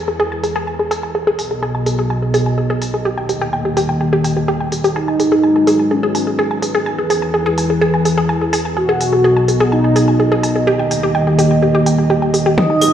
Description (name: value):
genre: melodic techno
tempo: 126 BPM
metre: 4/4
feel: straight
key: unclear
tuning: A4 = 440 Hz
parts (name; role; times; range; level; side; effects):
- dark analog pad; sustained chords; 0.0-12.9 s; B2 to D#5; -17 LUFS; equal; chorus, sidechain pumping
- analog pluck; arpeggios; 0.1-12.9 s; G4 to G#5; -17 LUFS; equal; chorus, sidechain pumping, ping-pong delay
- deep house drum kit; drums; 0.4-12.9 s; claves, hi-hat, toms; -24 LUFS; left 1 dB; low-pass filter on hats, low-pass filter on toms, low-pass filter on perc, low-pass filter on snare, low-pass filter on cymbals
- expressive synth lead; melody; 5.0-12.9 s; C#4 to F#4; -18 LUFS; equal; analog chorus, sidechain pumping, dub echo
- airy dreamy lead; second line; 12.6-12.9 s; D#5; -15 LUFS; right 1 dB; chorus, sidechain pumping
- electronic kick drum; drums; 12.6-12.7 s; none; -20 LUFS; right 1 dB; high-pass filter on kick
- gritty driven synth bass; bass; 12.8-12.9 s; G#1; -25 LUFS; equal; none
room: moderate huge ambient reverb, RT60 7.4 s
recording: played on a big sound system in a bare room, stone room reverb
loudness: -13 LUFS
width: side -10 dB against mid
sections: 0.0-12.6 A section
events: filter sweep on analog synth pad 0.0-12.6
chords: 0.0 E; 1.1 B; 3.1 D#; 5.0 G#m7; 6.9 E; 8.8 B; 10.7 D#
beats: 0.20 0.67 | 1.15 1.63 2.10 2.58 | 3.05 3.53 4.01 4.48 | 4.96 5.43 5.91 6.39 | 6.86 7.34 7.82 8.29 | 8.77 9.24 9.72 10.20 | 10.67 11.15 11.63 12.10 | 12.58